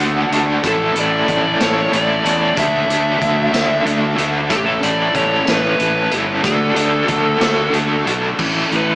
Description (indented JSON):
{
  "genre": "psychedelic rock",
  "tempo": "62 BPM (dotted quarters)",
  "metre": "6/8",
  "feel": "straight",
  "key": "A major",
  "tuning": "A4 = 441 Hz",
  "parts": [
    { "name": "overdriven electric guitar", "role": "riff", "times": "0.0-8.9 s", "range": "A2 to A4", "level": "-17 LUFS", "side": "equal", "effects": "tremolo" },
    { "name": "fuzz fingered electric bass", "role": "bass", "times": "0.0-8.9 s", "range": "G1 to E2", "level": "-22 LUFS", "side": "equal", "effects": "overdrive" },
    { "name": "raw garage drum kit", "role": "drums", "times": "0.0-8.9 s", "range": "crash cymbal, hi-hat, kick drum, snare drum", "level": "-22 LUFS", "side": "equal", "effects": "none" },
    { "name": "tambourine", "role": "percussion", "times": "0.0-8.3 s", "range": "none", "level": "-36 LUFS", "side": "left 2 dB", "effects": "none" },
    { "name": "fuzz lead guitar", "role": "melody", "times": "0.7-8.9 s", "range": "G4 to E5", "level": "-19 LUFS", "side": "equal", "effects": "distortion, diffuse ambient delay" }
  ],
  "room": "wet huge ambient reverb, RT60 5.5 s",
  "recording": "dreamy mix soaked in reverb, small speaker sound",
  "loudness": "-13 LUFS",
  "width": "side -22 dB against mid",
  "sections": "0.0-8.4 A section",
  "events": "none",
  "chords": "0.0 D; 0.6 A; 2.6 D; 4.5 A; 6.4 D; 8.4 A",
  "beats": "| 0.64 1.61 | 2.57 3.54 | 4.51 5.47 | 6.45 7.42 | 8.39"
}